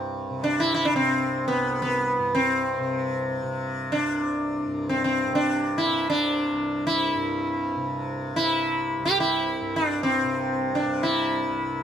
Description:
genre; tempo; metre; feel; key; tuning
indian classical, Hindustani; free time; none; none; C raga hamsadhwani; A4 = 440 Hz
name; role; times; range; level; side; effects
tanpura; drone; 0.0-11.8 s; C2 to C3; -31 LUFS; equal; none
sitar; melody; 0.4-11.8 s; B3 to G4; -23 LUFS; equal; plate reverb
room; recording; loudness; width
light reverb; close, detailed microphones; -22 LUFS; side -9 dB against mid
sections
0.0-11.8 A section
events
none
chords
none

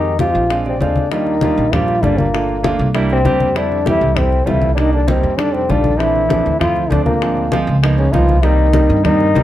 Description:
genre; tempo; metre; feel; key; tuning
Afro-Cuban jazz; 196 BPM; 4/4; straight; unclear; A4 = 438 Hz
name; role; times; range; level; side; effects
trombone with cup mute; melody; 0.0-9.4 s; Bb3 to F4; -17 LUFS; left 3 dB; plate reverb
mellow trombone; second line; 0.0-9.4 s; Bb2 to F3; -23 LUFS; right 3 dB; none
warm grand piano; accompaniment; 0.0-9.4 s; Eb3 to F5; -20 LUFS; right 4 dB; none
upright bass; bass; 0.0-9.4 s; G1 to G2; -18 LUFS; equal; none
congas; percussion; 0.1-9.4 s; none; -21 LUFS; left 2 dB; none
bongos; percussion; 0.2-9.4 s; none; -26 LUFS; left 8 dB; none
room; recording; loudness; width
light reverb; dark, warm production; -13 LUFS; side -13 dB against mid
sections
0.0-1.1 A section; 1.1-9.4 B section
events
grand piano fill 0.5-1.1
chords
0.0 Fm7; 0.5 Bb7; 1.1 Ebmaj9; 2.3 Gm7; 2.9 C9; 3.6 Fmaj9; 4.8 Cm9; 5.4 F13; 6.0 Bbmaj7; 7.2 Dm7b5; 7.8 Db13; 8.4 Cm7

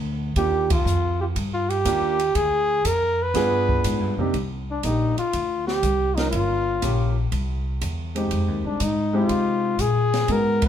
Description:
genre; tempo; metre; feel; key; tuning
jazz, small-group swing and bop; 121 BPM; 4/4; swing 69% on 8ths; C minor; A4 = 440 Hz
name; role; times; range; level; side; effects
upright bass; bass; 0.0-10.7 s; G1 to C3; -25 LUFS; equal; none
dark trumpet; melody; 0.4-10.7 s; D4 to B4; -23 LUFS; left 1 dB; none
warm grand piano; accompaniment; 0.4-10.7 s; C3 to Bb4; -26 LUFS; right 1 dB; none
open jazz drum kit; drums; 0.4-10.7 s; hi-hat, kick drum, ride cymbal, snare drum; -30 LUFS; right 1 dB; none
room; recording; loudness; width
moderate club reverb, RT60 0.8 s; heard from further back in the room; -20 LUFS; side -9 dB against mid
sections
0.0-4.3 A section; 4.3-10.7 B section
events
band accent 0.6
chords
0.4 Ebmaj7; 2.4 Ddim; 3.3 G7b9; 4.3 Cm9; 6.3 Gm7b5; 7.3 C; 8.3 Fm7

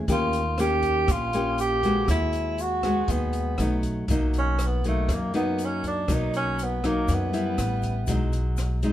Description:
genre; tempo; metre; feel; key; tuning
bossa nova; 120 BPM; 4/4; straight; unclear; A4 = 440 Hz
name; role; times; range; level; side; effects
nylon-string guitar; accompaniment; 0.0-8.9 s; F#2 to G4; -28 LUFS; left 2 dB; none
upright bass; bass; 0.0-8.9 s; A1 to F#2; -27 LUFS; equal; none
warm tenor saxophone; melody; 0.1-8.6 s; A3 to G4; -27 LUFS; right 1 dB; plate reverb
open jazz drum kit; drums; 0.1-8.9 s; hi-hat, kick drum, rim click; -32 LUFS; equal; none
egg shaker; percussion; 0.1-8.9 s; none; -46 LUFS; left 6 dB; none
room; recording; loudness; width
light reverb; dark, warm production; -22 LUFS; side -12 dB against mid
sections
0.0-4.1 A section; 4.1-8.9 B section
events
tenor saxophone solo 4.1-8.9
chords
0.1 D#7; 2.1 G#m7/D#; 3.6 B7; 4.1 Bmaj7; 7.6 A5; 8.1 G#m7/B

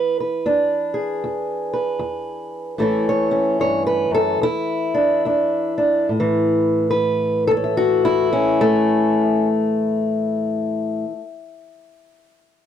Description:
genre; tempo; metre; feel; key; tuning
acoustic country blues, solo or duo; 69-78 BPM; 4/4; swing 63% on 8ths; A major; A4 = 440 Hz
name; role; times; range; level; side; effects
fingerpicked steel-string acoustic guitar; solo; 0.0-11.2 s; E2 to E5; -17 LUFS; equal; none
room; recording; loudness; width
light reverb; dry, close 1970s-style studio recording; -17 LUFS; side -9 dB against mid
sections
0.0-6.1 A section; 6.1-9.6 B section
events
slowing down 0.0-6.1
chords
0.0 E7; 2.8 A7; 4.4 Dsus2/E; 6.1 A69

